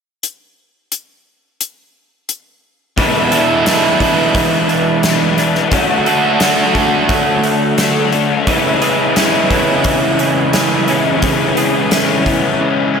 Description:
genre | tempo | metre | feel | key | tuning
rock, shoegaze and dream pop | 87 BPM | 4/4 | straight | E mixolydian | A4 = 438 Hz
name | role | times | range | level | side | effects
gated 80s drum kit | drums | 0.2-12.4 s | hi-hat, kick drum, snare drum | -19 LUFS | equal | none
direct-recorded clean electric guitar | arpeggios | 3.0-13.0 s | E3 to A4 | -22 LUFS | right 6 dB | analog chorus, diffuse ambient delay
biting overdriven guitar | riff | 3.0-13.0 s | E2 to F#4 | -16 LUFS | right 6 dB | reverse reverb
crunchy overdriven guitar | riff | 3.0-13.0 s | E2 to F#4 | -15 LUFS | left 7 dB | analog chorus
room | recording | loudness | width
wet huge ambient reverb, RT60 4.1 s | dreamy mix soaked in reverb | -11 LUFS | side -6 dB against mid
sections
0.2-3.0 A section; 3.0-13.0 B section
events
none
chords
0.2 N.C.; 3.0 E7sus4; 5.7 D; 8.5 C#m7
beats
| 0.23 0.91 1.60 2.29 | 2.97 3.66 4.35 5.03 | 5.72 6.41 7.10 7.78 | 8.47 9.16 9.85 10.54 | 11.22 11.91 12.60

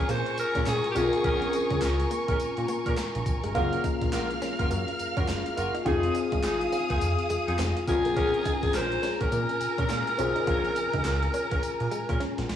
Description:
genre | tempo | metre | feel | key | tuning
R&B, new jack swing | 104 BPM | 4/4 | swing 61% on 16ths | Bb minor | A4 = 441 Hz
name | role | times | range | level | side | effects
breathy alto saxophone | melody | 0.0-2.1, 7.9-12.2 s | G4 to C5 | -29 LUFS | equal | cassette tape, plate reverb
mellow tine electric piano | accompaniment | 0.0-12.6 s | Bb3 to Bb4 | -30 LUFS | left 3 dB | phaser, cassette tape, plate reverb
warm studio string section | sustained chords | 0.0-12.6 s | Ab4 to F6 | -34 LUFS | left 1 dB | cassette tape, plate reverb
direct-recorded clean electric guitar | riff | 0.0-12.4 s | Ab3 to F4 | -37 LUFS | right 5 dB | analog chorus, cassette tape
warm horn section | stabs | 0.0-12.2 s | Db4 to Bb4 | -35 LUFS | right 2 dB | cassette tape, tape echo, plate reverb
fat analog bass | bass | 0.0-12.6 s | F1 to Bb2 | -30 LUFS | equal | none
gated 80s digital drum machine | drums | 0.1-12.6 s | handclaps, hi-hat, kick drum, snare drum, tambourine | -32 LUFS | equal | gated reverb, gated reverb snare, overdrive, cassette tape
room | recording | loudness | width
moderate booth ambience, RT60 0.2 s | home recording on cassette, small room reverb | -24 LUFS | side -10 dB against mid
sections
0.0-12.6 A section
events
drum fill 12.2-12.6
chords
0.0 Bbm7; 3.6 Gbmaj7; 5.9 Fm7; 7.9 Bbm7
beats
0.09 0.67 | 1.24 1.82 2.40 2.97 | 3.55 4.13 4.71 5.28 | 5.86 6.44 7.01 7.59 | 8.17 8.74 9.32 9.90 | 10.47 11.05 11.63 12.21

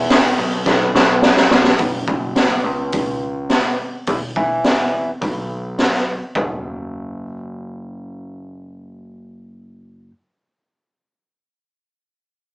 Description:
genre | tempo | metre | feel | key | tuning
quiet-loud alternative rock | 105 BPM | 4/4 | straight | unclear | A4 = 440 Hz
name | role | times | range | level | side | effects
overdriven picked electric bass | bass | 0.0-10.1 s | F#1 to E3 | -24 LUFS | equal | none
raw garage drum kit | drums | 0.1-6.5 s | hi-hat, kick drum, snare drum, toms | -16 LUFS | equal | none
room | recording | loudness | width
little or no reverb | rough rehearsal-room recording, tube saturation, small speaker sound | -15 LUFS | side -30 dB against mid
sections
0.0-1.8 A section; 1.8-6.4 B section; 6.4-8.6 C section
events
drum fill 0.7-1.8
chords
none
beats
0.11 0.67 1.23 | 1.80 2.36 2.93 3.50 | 4.07 4.64 5.21 5.78 | 6.35 6.92 7.50 8.07

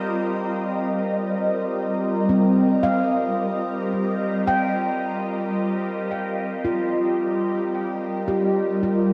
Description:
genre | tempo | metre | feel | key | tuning
ambient | 55 BPM | 4/4 | straight | Eb major | A4 = 437 Hz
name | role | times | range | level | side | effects
ethereal airy pad | sustained chords | 0.0-9.1 s | G3 to Eb5 | -25 LUFS | equal | ensemble chorus, built-in reverb, phaser
handpan | arpeggios | 0.0-9.1 s | C4 to G5 | -27 LUFS | equal | tape echo
room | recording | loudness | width
wet lush hall reverb, RT60 2.6 s | dreamy mix soaked in reverb | -23 LUFS | mono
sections
0.1-9.1 A section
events
none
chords
0.1 Ebadd9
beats
| 0.10 1.19 2.28 3.37 | 4.46 5.55 6.65 7.74 | 8.83

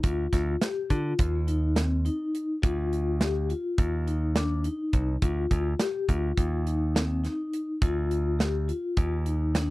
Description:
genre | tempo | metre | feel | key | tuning
progressive instrumental, band music in an uneven meter | 208 BPM (eighths) | 9/8 | straight | D phrygian | A4 = 440 Hz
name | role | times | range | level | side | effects
vibraphone with soft mallets | arpeggios | 0.0-9.7 s | C4 to G4 | -30 LUFS | left 3 dB | none
modern bright picked electric bass | bass | 0.0-9.7 s | C2 to D3 | -27 LUFS | equal | none
modern studio drum kit | drums | 0.0-9.7 s | hi-hat, kick drum, snare drum | -26 LUFS | right 1 dB | none
room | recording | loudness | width
little or no reverb | dry, close 1970s-style studio recording | -25 LUFS | side -19 dB against mid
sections
0.0-9.7 A section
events
none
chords
0.0 Dm; 1.2 Cm/Eb; 2.6 Dm; 3.8 Cmadd9; 5.2 Dm; 6.4 Cm/Eb; 7.8 Dm; 9.0 C#add9 (rootless)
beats
| 0.04 0.33 0.62 0.91 1.19 1.48 1.77 2.06 2.35 | 2.63 2.92 3.21 3.50 3.79 4.08 4.36 4.65 4.94 | 5.23 5.51 5.80 6.09 6.38 6.67 6.96 7.24 7.53 | 7.82 8.11 8.39 8.68 8.97 9.26 9.55

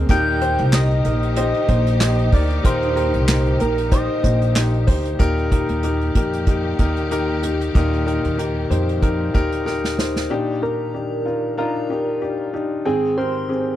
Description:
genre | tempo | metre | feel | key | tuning
piano-driven pop | 94 BPM | 4/4 | swing 56% on 16ths | Eb major | A4 = 439 Hz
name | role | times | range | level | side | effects
clear upright piano | accompaniment | 0.0-13.8 s | Ab2 to G5 | -22 LUFS | left 2 dB | none
warm studio string section | sustained chords | 0.0-10.3 s | Eb3 to G4 | -32 LUFS | equal | none
upright bass | bass | 0.0-10.3 s | Bb1 to F2 | -21 LUFS | equal | none
soft struck synth lead | melody | 0.1-4.9, 10.6-13.8 s | Ab4 to G5 | -23 LUFS | right 1 dB | chorus, slapback echo
unplugged drum kit | drums | 0.1-10.3 s | handclaps, hi-hat, kick drum, snare drum | -19 LUFS | right 1 dB | none
room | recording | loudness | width
little or no reverb | dry, close 1970s-style studio recording | -17 LUFS | side -12 dB against mid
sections
0.0-5.2 A section; 5.2-10.3 B section; 10.3-13.8 C section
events
drum fill 9.7-10.3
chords
0.1 Eb; 10.3 Ebmaj7; 12.9 Abmaj7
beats
| 0.09 0.73 1.37 2.01 | 2.64 3.28 3.92 4.56 | 5.20 5.83 6.47 7.11 | 7.75 8.39 9.03 9.66 | 10.30 10.94 11.58 12.22 | 12.86 13.49

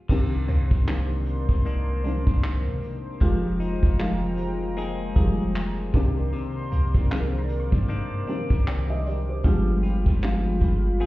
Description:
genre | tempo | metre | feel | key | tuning
contemporary R&B | 77 BPM | 4/4 | swing 58% on 16ths | C minor | A4 = 445 Hz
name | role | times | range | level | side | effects
felt-muted upright piano | accompaniment | 0.1-11.1 s | Eb3 to G5 | -29 LUFS | equal | none
chorused pulse-width pad | sustained chords | 0.1-11.1 s | Ab3 to D6 | -35 LUFS | equal | sidechain pumping
direct-recorded clean electric guitar | arpeggios | 0.1-11.1 s | C3 to Ab4 | -33 LUFS | left 5 dB | ping-pong delay
clean 808-style bass | bass | 0.1-11.1 s | F1 to C3 | -25 LUFS | equal | none
vintage brush drum kit | drums | 0.1-11.1 s | crash cymbal, handclaps, hi-hat, kick drum | -23 LUFS | equal | none
glassy wavetable pluck | texture | 0.5-2.1, 7.1-11.1 s | C5 to C6 | -46 LUFS | right 2 dB | chorus, ping-pong delay
room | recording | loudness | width
small room ambience | heard muffled through a wall, stone room reverb, EQ | -22 LUFS | side -18 dB against mid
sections
0.1-11.1 A section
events
none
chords
0.1 Cm9; 3.2 Fm11; 5.9 Cm9; 9.4 G7b9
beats
| 0.10 0.88 1.65 2.43 | 3.21 3.99 4.77 5.55 | 6.33 7.11 7.89 8.67 | 9.45 10.23 11.01

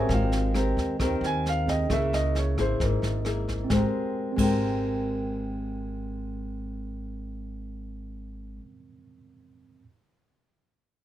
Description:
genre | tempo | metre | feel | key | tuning
bossa nova | 133 BPM | 4/4 | straight | Ab major | A4 = 440 Hz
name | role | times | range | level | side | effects
warm grand piano | melody | 0.0-3.2 s | F4 to Ab5 | -30 LUFS | right 2 dB | none
barky tine electric piano | accompaniment | 0.0-9.8 s | C4 to G5 | -35 LUFS | right 4 dB | none
nylon-string guitar | accompaniment | 0.0-8.7 s | Ab2 to Bb4 | -30 LUFS | left 3 dB | none
upright bass | bass | 0.0-8.6 s | Ab1 to Eb2 | -30 LUFS | equal | none
jazz brush drum kit | drums | 0.1-4.5 s | crash cymbal, kick drum, rim click, snare drum | -33 LUFS | equal | none
room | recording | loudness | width
little or no reverb | close, detailed microphones | -24 LUFS | side -12 dB against mid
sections
0.0-3.7 A section; 3.7-7.3 B section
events
grand piano solo 0.0-3.7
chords
0.1 Abmaj9; 1.9 Dbm6; 3.7 Abmaj9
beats
| 0.09 0.54 0.99 1.44 | 1.89 2.34 2.80 3.25 | 3.70 4.15 4.60 5.06 | 5.51 5.96 6.41 6.86

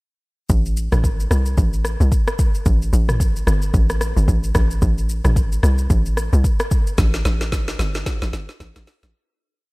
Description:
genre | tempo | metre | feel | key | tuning
amapiano | 111 BPM | 4/4 | swing 58% on 16ths | A minor | A4 = 441 Hz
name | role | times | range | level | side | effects
tight log drum bass | bass | 0.5-9.1 s | G1 to C2 | -18 LUFS | equal | none
deep house drum kit | drums | 0.5-9.1 s | hi-hat, kick drum, rim click, shaker, snare drum, toms | -19 LUFS | equal | none
room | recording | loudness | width
little or no reverb | none | -16 LUFS | side -24 dB against mid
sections
0.5-9.1 drop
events
drop 0.5-9.1; fade-out 7.0-9.1; drum fill 7.0-9.1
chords
none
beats
| 0.50 1.04 1.58 2.12 | 2.66 3.20 3.74 4.28 | 4.82 5.36 5.90 6.44 | 6.98 7.52 8.06 8.60

